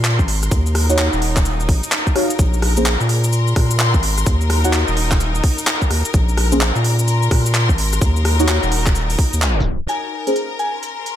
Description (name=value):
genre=UK garage, two-step garage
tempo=128 BPM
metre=4/4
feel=swing 63% on 16ths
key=Bb minor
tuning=A4 = 440 Hz
part: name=saturated sub bass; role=bass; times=0.0-9.8 s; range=Eb1 to Bb2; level=-17 LUFS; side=equal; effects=none
part: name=garage drum kit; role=drums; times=0.0-11.2 s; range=cabasa, handclaps, hi-hat, rim click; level=-21 LUFS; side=equal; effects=none
part: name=clear symphonic string section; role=texture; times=0.0-11.2 s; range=Eb4 to C6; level=-25 LUFS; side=left 4 dB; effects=sidechain pumping
part: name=electronic kick drum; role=drums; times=0.2-9.6 s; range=none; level=-18 LUFS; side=equal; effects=none
part: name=deep mellow chord stab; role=stabs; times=0.9-10.4 s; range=Bb3 to Gb5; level=-23 LUFS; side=equal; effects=chorus, phaser, dub echo
part: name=soft synth bell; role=melody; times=9.9-10.8 s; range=Ab5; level=-25 LUFS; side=equal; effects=chorus
room=little or no reverb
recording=tape stop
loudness=-15 LUFS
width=side -11 dB against mid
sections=0.0-9.9 A section; 9.9-11.2 B section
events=filter sweep on synth stab 0.0-9.9; tape stop 9.4-9.9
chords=0.0 Bb7sus2; 0.5 Ebm9; 2.4 Bb7sus2; 4.3 Ebm7; 6.1 Bb7sus2; 8.0 Ebm9; 9.9 Bbm9